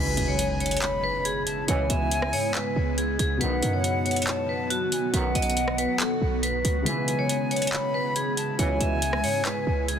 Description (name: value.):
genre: hip hop, trap.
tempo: 139 BPM.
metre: 4/4.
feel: half-time.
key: C# minor.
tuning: A4 = 440 Hz.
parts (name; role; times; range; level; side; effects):
vibraphone with hard mallets; melody; 0.0-10.0 s; F#4 to E5; -28 LUFS; equal; low-pass filter, digital delay.
concert flute; second line; 0.0-9.8 s; F#5 to B5; -32 LUFS; left 2 dB; digital delay.
dark concert grand piano; accompaniment; 0.0-10.0 s; B2 to B4; -34 LUFS; left 4 dB; low-pass filter.
granular cloud pad; sustained chords; 0.0-10.0 s; C#3 to F#4; -31 LUFS; equal; built-in reverb.
clear brass ensemble; stabs; 0.0-9.0 s; B1 to E3; -32 LUFS; right 6 dB; none.
short 808-style bass; bass; 0.0-10.0 s; B1 to G#2; -28 LUFS; equal; none.
impact; sound effects; 0.0-1.7 s; none; -35 LUFS; equal; none.
trap drum kit; drums; 0.2-10.0 s; handclaps, hi-hat, rim click; -30 LUFS; equal; overdrive.
room: small room ambience.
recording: dense, heavily limited modern master.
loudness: -23 LUFS.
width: side -8 dB against mid.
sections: 0.0-10.0 A section.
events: impact 0.0-1.7; kick muted 6.9-7.7.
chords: 0.0 C#m7; 3.4 B; 6.9 C#m7.